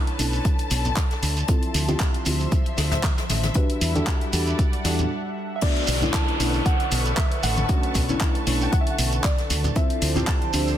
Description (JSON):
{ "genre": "deep house", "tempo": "116 BPM", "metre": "4/4", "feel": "swing 55% on 16ths", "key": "B minor", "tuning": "A4 = 441 Hz", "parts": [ { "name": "airy breathy pad", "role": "sustained chords", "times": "0.0-10.8 s", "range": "D3 to C#6", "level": "-34 LUFS", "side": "right 1 dB", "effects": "chorus, vintage 12-bit sampler grit, sidechain pumping" }, { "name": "deep mellow chord stab", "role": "stabs", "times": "0.0-10.8 s", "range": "A3 to B4", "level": "-29 LUFS", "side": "left 1 dB", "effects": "chorus, sidechain pumping, digital delay" }, { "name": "warm symphonic string section", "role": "texture", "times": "0.0-10.8 s", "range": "D3 to E6", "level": "-33 LUFS", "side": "left 1 dB", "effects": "sidechain pumping" }, { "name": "deep house drum kit", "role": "drums", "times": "0.1-10.6 s", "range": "crash cymbal, handclaps, hi-hat", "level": "-29 LUFS", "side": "left 1 dB", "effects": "none" }, { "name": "fingered electric bass", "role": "bass", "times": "0.2-10.7 s", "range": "A1 to E2", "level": "-24 LUFS", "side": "equal", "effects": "sidechain pumping" }, { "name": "jazz brush drum kit", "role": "drums", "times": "0.2-10.7 s", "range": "hi-hat, snare drum", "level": "-36 LUFS", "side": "left 3 dB", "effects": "none" }, { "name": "shekere", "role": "percussion", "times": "0.2-10.8 s", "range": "none", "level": "-34 LUFS", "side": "right 4 dB", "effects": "none" }, { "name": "electronic kick drum", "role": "drums", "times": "0.5-10.4 s", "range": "none", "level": "-22 LUFS", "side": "equal", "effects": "none" }, { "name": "congas", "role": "percussion", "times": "0.9-10.3 s", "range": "none", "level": "-32 LUFS", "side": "left 2 dB", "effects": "sidechain pumping on perc" }, { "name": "soft round pluck", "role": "melody", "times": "5.6-10.8 s", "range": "D5 to A5", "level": "-31 LUFS", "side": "right 1 dB", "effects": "lush chorus, cassette tape, tape echo" }, { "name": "downlifter", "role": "sound effects", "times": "5.6-9.8 s", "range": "none", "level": "-32 LUFS", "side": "equal", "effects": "none" } ], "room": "light reverb, small room ambience", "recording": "dense, heavily limited modern master", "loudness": "-20 LUFS", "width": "side -11 dB against mid", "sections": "0.0-5.6 A section; 5.6-10.8 B section", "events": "filter sweep on synth stab 0.0-5.6; break 5.1-5.6; drop 5.6-10.8", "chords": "0.0 Bm9; 1.2 Dm9; 3.6 Em9; 5.6 Bm9; 9.5 Dm9", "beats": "0.45 0.97 | 1.49 2.00 2.52 3.04 | 3.55 4.07 4.59 5.11 | 5.62 6.14 6.66 7.17 | 7.69 8.21 8.73 9.24 | 9.76 10.28" }